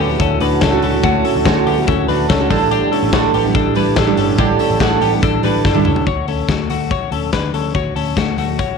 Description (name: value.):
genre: jangly indie pop.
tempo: 143 BPM.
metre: 4/4.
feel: straight.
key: D major.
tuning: A4 = 443 Hz.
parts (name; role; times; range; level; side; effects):
picked steel-string acoustic guitar; accompaniment; 0.0-6.1 s; A2 to A4; -17 LUFS; right 14 dB; none.
mellow French horn section; sustained chords; 0.0-6.0 s; D3 to G4; -23 LUFS; right 2 dB; stereo widening.
twelve-string electric guitar; arpeggios; 0.0-8.8 s; A3 to C#5; -19 LUFS; left 13 dB; none.
vintage muted picked electric bass; bass; 0.0-8.6 s; G1 to D2; -21 LUFS; equal; none.
big rock drum kit; drums; 0.2-8.7 s; hi-hat, kick drum, snare drum, toms; -19 LUFS; left 3 dB; none.
room: light reverb.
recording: 1960s-style stereo with parts hard left and right.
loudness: -13 LUFS.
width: side -5 dB against mid.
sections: 0.0-6.1 A section; 6.1-8.8 B section.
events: drum fill 5.6-6.1.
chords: 0.0 Dmaj7; 2.5 A7sus4; 6.1 Dmaj7.